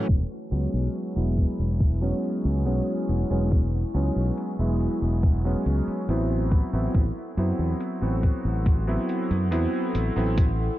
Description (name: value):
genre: vaporwave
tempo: 70 BPM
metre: 4/4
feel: straight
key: E major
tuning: A4 = 440 Hz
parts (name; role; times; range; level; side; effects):
- clear electric grand piano; accompaniment; 0.0-10.4 s; F#3 to F#4; -27 LUFS; right 1 dB; analog chorus, diffuse ambient delay
- warbly tape-like pad; sustained chords; 0.0-10.8 s; E4 to C#6; -37 LUFS; left 2 dB; chorus, built-in reverb, vintage 12-bit sampler grit
- fingered electric bass; bass; 0.1-10.7 s; E1 to F#2; -25 LUFS; equal; tube saturation
- electronic hi-hat; drums; 0.1-10.6 s; none; -49 LUFS; equal; vintage 12-bit sampler grit
- electronic kick drum; drums; 0.1-10.6 s; none; -21 LUFS; equal; vintage 12-bit sampler grit
room: light reverb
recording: low-pass filter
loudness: -22 LUFS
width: side -15 dB against mid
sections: 0.1-10.8 A section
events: filter sweep on ambient pad 0.1-10.8; filter sweep 0.1-10.8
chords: 0.1 E6; 6.5 Am6